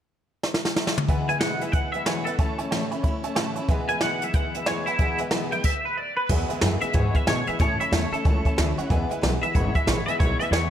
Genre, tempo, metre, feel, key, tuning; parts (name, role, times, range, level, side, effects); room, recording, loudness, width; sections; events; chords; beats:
rockabilly; 184 BPM; 4/4; swing 62% on 8ths; E major; A4 = 440 Hz
jazz brush drum kit; drums; 0.4-10.6 s; crash cymbal, hi-hat, kick drum, snare drum, toms; -24 LUFS; equal
honky-tonk upright piano; accompaniment; 1.1-10.6 s; B4 to B5; -33 LUFS; right 7 dB
picked steel-string acoustic guitar; accompaniment; 1.1-10.7 s; E2 to E4; -31 LUFS; left 3 dB
twangy electric guitar; melody; 1.3-10.7 s; E4 to G#5; -27 LUFS; equal; analog chorus, tape echo
upright bass; bass; 6.3-10.7 s; G#1 to B2; -26 LUFS; equal
light reverb; -22 LUFS; side -10 dB against mid
0.0-1.1 A section; 1.1-6.3 B section; 6.3-10.7 C section
drum fill 0.4-1.1; honky-tonk piano fill 3.0-3.7
0.0 N.C.; 1.1 E; 2.4 A; 3.7 E; 7.6 A; 8.9 E
0.11 0.43 0.76 | 1.08 1.41 1.74 2.06 | 2.39 2.71 3.04 3.37 | 3.69 4.02 4.34 4.67 | 5.00 5.32 5.65 5.97 | 6.30 6.62 6.95 7.27 | 7.60 7.92 8.25 8.57 | 8.90 9.22 9.55 9.87 | 10.20 10.53